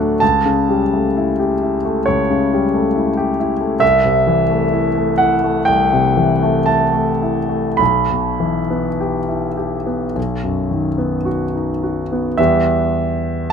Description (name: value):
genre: classical, romantic nocturne for solo piano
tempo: 49-69 BPM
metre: 4/4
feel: rubato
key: E minor from 3.8 s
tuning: A4 = 440 Hz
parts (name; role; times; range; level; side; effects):
- warm concert grand piano; solo; 0.0-13.5 s; B1 to B5; -14 LUFS; equal; none
room: moderate stone room reverb, RT60 1.4 s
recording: close, detailed microphones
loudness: -14 LUFS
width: side -7 dB against mid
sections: 0.0-12.4 A section; 12.4-13.5 B section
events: none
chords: 0.2 A7/C#; 3.8 Am/C; 7.8 Em/B; 10.2 B; 12.4 Em